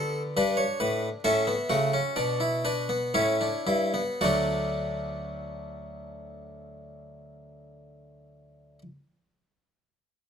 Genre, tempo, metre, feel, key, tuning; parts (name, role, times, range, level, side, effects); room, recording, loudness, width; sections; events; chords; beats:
classical, baroque-style 4-part fugue for harpsichord; 54-72 BPM; 3/4; straight; D major; A4 = 439 Hz
harpsichord; solo; 0.0-8.8 s; D2 to F#5; -26 LUFS; equal
light reverb; close, detailed microphones; -24 LUFS; side -7 dB against mid
0.0-4.2 A section; 4.2-7.5 B section
slowing down 0.0-4.2
0.4 G; 1.2 D/A; 3.1 A7; 4.2 D
0.36 | 1.23 2.15 3.13 | 4.19 5.31 6.43